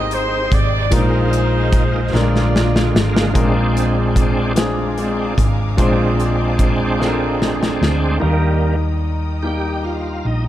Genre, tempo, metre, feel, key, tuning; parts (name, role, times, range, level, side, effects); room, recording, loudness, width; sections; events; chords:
slow gospel; 49 BPM (dotted quarters); 6/8; straight; A4 = 440 Hz
bright saxophone section; melody; 0.0-3.3 s; Eb4 to D5; -22 LUFS; right 1 dB
clear baby grand piano; accompaniment; 0.0-10.5 s; Ab2 to C5; -22 LUFS; left 2 dB
bright tonewheel organ; sustained chords; 0.0-10.4 s; D3 to G4; -22 LUFS; right 2 dB; slow rotary speaker, chorus vibrato
hollow-body short-scale fingered electric bass; bass; 0.0-10.5 s; Ab1 to Eb2; -19 LUFS; equal
modern studio drum kit; drums; 0.1-8.0 s; hi-hat, kick drum, snare drum; -19 LUFS; equal
warm symphonic string section; sustained chords; 3.3-10.5 s; Eb5 to Eb6; -32 LUFS; equal
light reverb; dark, warm production; -14 LUFS; side -13 dB against mid
0.0-3.4 A section; 3.4-8.2 B section; 8.2-10.5 C section
drum fill 2.1-3.4, 7.0-8.2; tonewheel organ solo 3.4-8.2, 8.2-10.5
0.0 Abmaj7; 0.9 Bb7sus4; 2.1 Bb7; 8.2 Eb